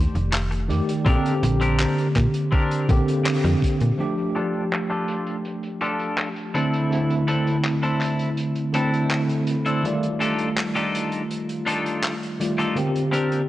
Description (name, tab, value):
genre	vaporwave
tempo	82 BPM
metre	4/4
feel	straight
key	unclear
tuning	A4 = 439 Hz
part	bell-like tine electric piano	accompaniment	0.0-13.5 s	D3 to D5	-23 LUFS	equal	medium stereo tremolo, lush chorus, analog delay
part	slap-like FM bass	bass	0.0-3.9 s	F1 to Bb2	-22 LUFS	equal	none
part	open jazz drum kit	drums	0.2-13.5 s	handclaps, hi-hat	-31 LUFS	equal	low-pass filter on hats, vintage 12-bit sampler grit, low-pass filter on snare, low-pass filter on room
part	semi-hollow electric guitar	riff	0.3-13.4 s	C4 to Bb4	-27 LUFS	left 2 dB	lush chorus, low-pass filter, analog delay
part	electronic kick drum	drums	1.1-3.8 s	none	-20 LUFS	equal	vintage 12-bit sampler grit
room	light reverb, studio reverb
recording	dry, gritty hardware recording, cassette tape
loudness	-20 LUFS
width	side -15 dB against mid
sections	0.0-4.0 A section; 4.0-13.5 B section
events	band accent 3.3-3.6; filter sweep on clean electric guitar 4.0-13.5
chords	0.0 F13; 1.1 Bb69; 4.0 F69; 6.5 C69; 9.8 F13; 12.8 Bb69